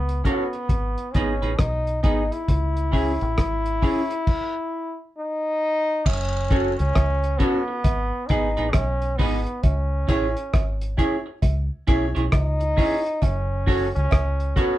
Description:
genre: roots reggae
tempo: 67 BPM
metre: 4/4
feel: swing 62% on 16ths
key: F# dorian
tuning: A4 = 439 Hz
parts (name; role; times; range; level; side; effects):
- bright trombone; melody; 0.0-14.8 s; B3 to E4; -26 LUFS; equal; none
- deep dub fingered electric bass; bass; 0.0-14.5 s; F#1 to C#2; -25 LUFS; equal; none
- cloth-damped thuddy drum kit; drums; 0.1-14.8 s; crash cymbal, hi-hat, kick drum, rim click; -22 LUFS; equal; none
- semi-hollow electric guitar; accompaniment; 0.2-14.7 s; B3 to C#5; -25 LUFS; right 3 dB; harmonic tremolo
- bright grand piano; stabs; 0.2-14.8 s; B3 to C#5; -30 LUFS; left 4 dB; none
- cowbell and jawbone-type rattle; percussion; 6.1-14.4 s; none; -33 LUFS; right 10 dB; none
room: moderate studio ambience, RT60 0.5 s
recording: band playing live in one room, cassette tape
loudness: -20 LUFS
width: side -14 dB against mid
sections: 0.0-6.1 A section; 6.1-14.8 B section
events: stop 4.3-6.1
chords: 0.0 F#m; 0.7 G#m; 2.5 C#m; 6.1 F#m; 7.9 G#m; 9.6 C#m; 13.2 F#m

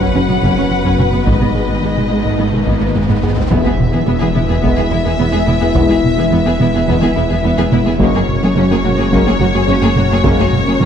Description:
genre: cinematic, hybrid orchestral and electronic film score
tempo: 107 BPM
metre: 4/4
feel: straight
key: unclear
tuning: A4 = 439 Hz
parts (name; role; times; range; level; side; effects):
- rich studio violin section; melody; 0.0-10.9 s; C#5 to F#5; -21 LUFS; left 3 dB; none
- clear symphonic violin section; second line; 0.0-10.9 s; B3 to B4; -24 LUFS; left 3 dB; none
- rich studio viola section; accompaniment; 0.0-10.9 s; G#3 to C#4; -21 LUFS; right 1 dB; none
- airy breathy pad; sustained chords; 0.0-10.9 s; C#3 to B4; -22 LUFS; equal; chorus
- mellow French horn section; sustained chords; 0.0-10.4 s; A#3 to F#4; -23 LUFS; left 5 dB; none
- harp-like synth pluck; arpeggios; 0.0-10.9 s; E3 to G#4; -22 LUFS; left 3 dB; none
- smooth gliding synth bass; riff; 0.0-10.9 s; E2 to G#3; -20 LUFS; right 2 dB; none
- detuned saw bass; bass; 0.0-10.9 s; E1 to G#1; -22 LUFS; equal; none
- rich symphonic cello section; bass; 0.0-10.9 s; E2 to G#2; -22 LUFS; right 3 dB; none
- taiko ensemble; drums; 0.0-10.8 s; none; -19 LUFS; equal; none
- riser and impact; sound effects; 1.1-5.8 s; none; -25 LUFS; equal; none
- rich symphonic double bass section; bass; 0.1-10.9 s; E1 to G#1; -22 LUFS; right 4 dB; none
- clear trombone section; sustained chords; 3.5-10.4 s; B2 to G#3; -27 LUFS; right 4 dB; none
room: moderate scoring stage reverb, RT60 2.0 s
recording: dark, warm production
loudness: -11 LUFS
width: side -8 dB against mid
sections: 0.0-3.5 A section; 3.5-10.9 B section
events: riser 1.1-3.5; drum fill 3.0-3.5; impact 3.5-5.8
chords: 0.0 F#sus4; 1.3 G#m; 3.5 E; 8.0 F#add9

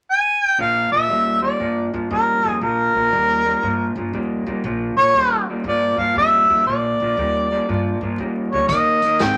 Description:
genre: electric blues shuffle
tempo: 119 BPM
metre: 4/4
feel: swing 65% on 8ths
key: Bb mixolydian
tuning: A4 = 439 Hz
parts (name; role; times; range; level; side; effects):
- mellow harmonica; melody; 0.1-9.4 s; Bb4 to Ab5; -19 LUFS; equal; overdrive
- electric guitar through a small old amp; riff; 0.6-9.4 s; Bb2 to C4; -26 LUFS; equal; none
- upright bass; bass; 0.6-9.4 s; Bb1 to Ab2; -32 LUFS; equal; none
- vintage drum kit; drums; 8.7-9.4 s; hi-hat, kick drum, snare drum; -26 LUFS; equal; none
room: moderate studio reverb, RT60 0.8 s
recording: vinyl crackle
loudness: -19 LUFS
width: mono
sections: 0.6-9.4 A section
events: none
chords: 0.0 N.C.; 0.6 Bb; 8.7 Eb

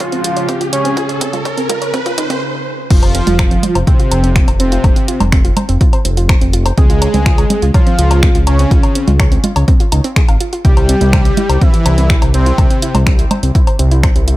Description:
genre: melodic techno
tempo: 124 BPM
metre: 4/4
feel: straight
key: F minor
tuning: A4 = 440 Hz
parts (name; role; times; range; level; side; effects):
- fat analog lead; melody; 0.0-13.0 s; C4 to Ab4; -20 LUFS; equal; chorus, sidechain pumping, dub echo
- deep dark ambient pad; sustained chords; 0.0-2.4 s; Db3 to Ab5; -27 LUFS; equal; chorus, built-in reverb, sidechain pumping
- soft round pluck; arpeggios; 0.0-14.3 s; C4 to F5; -22 LUFS; right 2 dB; chorus, sidechain pumping, digital delay
- electronic kick drum; drums; 0.0-14.1 s; none; -12 LUFS; equal; high-pass filter on kick
- punchy analog drum machine; drums; 0.0-14.4 s; congas, crash cymbal, finger snaps, hi-hat, woodblock; -19 LUFS; right 1 dB; high-pass filter on hats, high-pass filter on perc, high-pass filter on cymbals, high-pass filter on snare
- riser; sound effects; 0.0-2.4 s; none; -21 LUFS; right 2 dB; none
- soft supersaw; second line; 2.9-13.0 s; C3 to Ab3; -21 LUFS; equal; vintage 12-bit sampler grit, sidechain pumping, digital delay
- swelling detuned saw bass; bass; 2.9-14.4 s; F1 to Db2; -13 LUFS; equal; sidechain pumping
room: little or no reverb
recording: none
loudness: -10 LUFS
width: side -16 dB against mid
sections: 0.0-2.9 A section; 2.9-14.4 B section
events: build-up 0.0-2.9; drum fill 0.0-2.4; riser 0.0-2.4; filter sweep on synth arpeggio sound 0.0-2.9; stop 2.4-2.9; drop 2.9-14.4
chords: 0.0 Db; 2.9 F5; 6.8 Db; 10.6 C

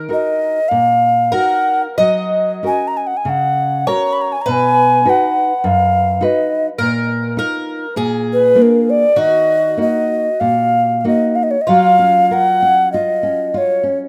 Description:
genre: fado-style ballad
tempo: 92-104 BPM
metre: 4/4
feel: rubato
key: Eb minor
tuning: A4 = 442 Hz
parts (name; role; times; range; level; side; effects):
- fingerpicked twelve-string acoustic guitar; second line; 0.0-14.1 s; E#4 to Eb5; -23 LUFS; equal; none
- nylon-string guitar; accompaniment; 0.0-14.1 s; F#2 to B4; -22 LUFS; equal; none
- breathy bright alto ocarina; melody; 0.1-14.0 s; Bb4 to Cb6; -16 LUFS; equal; none
room: light reverb, studio reverb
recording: rough home demo mix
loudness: -15 LUFS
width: mono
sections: 0.0-11.7 A section; 11.7-14.1 B section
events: none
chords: 0.0 Ebm; 2.0 Gb; 4.5 B; 6.8 Bbsus4; 8.0 Bb; 9.2 Ebm; 11.7 F#maj7

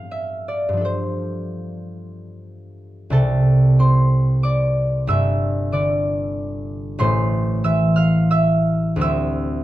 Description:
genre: classical, solo harp piece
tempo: 73-95 BPM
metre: 3/4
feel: rubato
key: C major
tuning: A4 = 440 Hz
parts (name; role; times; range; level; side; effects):
- concert harp; solo; 0.0-9.6 s; G1 to F6; -17 LUFS; equal; none
room: light reverb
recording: close, detailed microphones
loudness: -17 LUFS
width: side -14 dB against mid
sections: 0.0-3.1 A section; 3.1-9.6 B section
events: none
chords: 0.0 G9; 0.9 G9sus4; 3.1 Csus2; 5.1 Gsus24; 7.0 Am; 9.0 Dm11

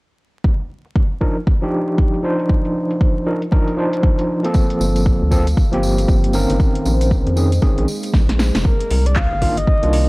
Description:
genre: deep house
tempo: 117 BPM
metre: 4/4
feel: swing 61% on 16ths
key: C minor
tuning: A4 = 436 Hz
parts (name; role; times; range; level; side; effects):
- electronic kick drum; drums; 0.4-9.8 s; none; -16 LUFS; equal; overdrive, vintage 12-bit sampler grit
- deep house drum kit; drums; 0.6-10.1 s; handclaps, hi-hat, snare drum; -24 LUFS; equal; overdrive, low-pass filter on hats, vintage 12-bit sampler grit, low-pass filter on snare, low-pass filter on room
- overdriven tine electric piano; stabs; 1.2-10.1 s; Eb3 to C5; -19 LUFS; equal; fast tremolo, low-pass filter, tape echo
- deep dark ambient pad; sustained chords; 5.3-10.1 s; Eb3 to D6; -28 LUFS; equal; chorus, built-in reverb, sidechain pumping
- tambourine; percussion; 4.5-8.6 s; none; -33 LUFS; right 1 dB; none
- rubbery square bass; bass; 4.8-10.1 s; F1 to F2; -17 LUFS; equal; tube saturation, sidechain pumping
- breathy flute-like synth lead; melody; 8.6-10.1 s; Bb4 to F5; -21 LUFS; equal; chorus
room: little or no reverb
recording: vinyl crackle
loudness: -15 LUFS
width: side -23 dB against mid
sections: 0.4-8.6 A section; 8.6-10.1 B section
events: filter sweep on drum 0.4-8.6; drum fill 8.1-8.6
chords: 0.4 Cm11; 4.5 Gm11; 6.6 Bbm11; 8.6 Cm11

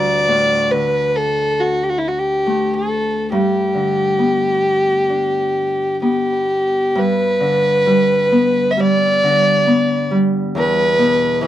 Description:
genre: celtic folk, Celtic slow air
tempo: 63-72 BPM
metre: 4/4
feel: rubato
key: G major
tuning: A4 = 436 Hz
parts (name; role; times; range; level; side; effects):
- dark fiddle; melody; 0.0-11.5 s; E4 to E5; -16 LUFS; equal; none
- Celtic harp; accompaniment; 0.0-11.5 s; D2 to D4; -19 LUFS; left 1 dB; none
room: little or no reverb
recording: dry, close 1970s-style studio recording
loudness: -14 LUFS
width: side -12 dB against mid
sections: 0.0-7.0 A section; 7.0-11.5 B section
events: none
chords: 0.0 D5; 3.3 G; 10.6 E5

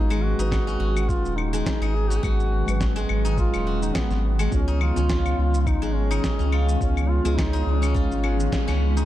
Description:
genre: organic downtempo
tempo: 105 BPM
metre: 4/4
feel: swing 55% on 16ths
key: G# dorian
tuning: A4 = 444 Hz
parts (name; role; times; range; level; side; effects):
- mellow duduk; melody; 0.0-8.8 s; B3 to G#4; -30 LUFS; equal; ping-pong delay
- muted felt-like synth keys; accompaniment; 0.0-9.1 s; F#3 to C#5; -32 LUFS; equal; chorus, sidechain pumping, ping-pong delay
- granular cloud pad; sustained chords; 0.0-9.1 s; D#3 to E#4; -33 LUFS; equal; built-in reverb, vintage 12-bit sampler grit, sidechain pumping
- steel-string zither; arpeggios; 0.0-9.1 s; G#3 to G#4; -30 LUFS; left 2 dB; ping-pong delay
- warm sub bass; bass; 0.0-9.1 s; D#1 to C#2; -23 LUFS; equal; sidechain pumping
- electronic claves, shaker and snare drum; drums; 0.1-9.1 s; none; -32 LUFS; left 1 dB; none
- electronic kick drum; drums; 0.5-8.6 s; none; -26 LUFS; equal; none
room: little or no reverb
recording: dark, warm production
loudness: -20 LUFS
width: side -13 dB against mid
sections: 0.0-9.1 A section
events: band accent 8.5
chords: 0.0 G#m7; 4.5 C#7

